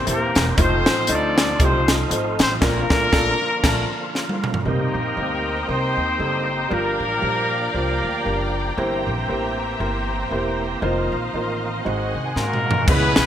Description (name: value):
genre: uptempo gospel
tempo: 117 BPM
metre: 4/4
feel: swing 57% on 8ths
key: unclear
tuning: A4 = 440 Hz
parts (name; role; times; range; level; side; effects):
- warm horn section; melody; 0.0-8.7, 12.4-13.3 s; Bb3 to D5; -22 LUFS; left 1 dB; none
- dark concert grand piano; accompaniment; 0.0-13.3 s; G2 to C6; -26 LUFS; equal; wide subtle chorus
- tonewheel organ; sustained chords; 0.0-13.3 s; D3 to G#4; -28 LUFS; right 2 dB; slow rotary speaker, overdrive, chorus vibrato
- upright bass; bass; 0.1-13.3 s; Eb1 to Ab2; -26 LUFS; equal; none
- crisp fusion drum kit; drums; 0.1-4.6, 12.4-13.3 s; crash cymbal, hi-hat, kick drum, snare drum, toms; -20 LUFS; equal; none
- rich studio string section; sustained chords; 4.7-12.9 s; C5 to Bb5; -30 LUFS; left 1 dB; none
room: moderate lush hall reverb, RT60 1.7 s, studio ambience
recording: bright 1980s-style digital production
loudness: -18 LUFS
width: side -10 dB against mid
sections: 0.0-4.7 A section; 4.7-12.9 B section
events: band accent 2.6-4.7; grand piano fill 3.1-4.7; drum fill 4.1-4.7, 12.4-12.9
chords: 0.0 C7; 0.6 F7; 2.6 Bbmaj7; 4.7 Cm7; 6.7 Gm7; 8.8 C7/G; 10.8 F7sus4; 11.9 Ab7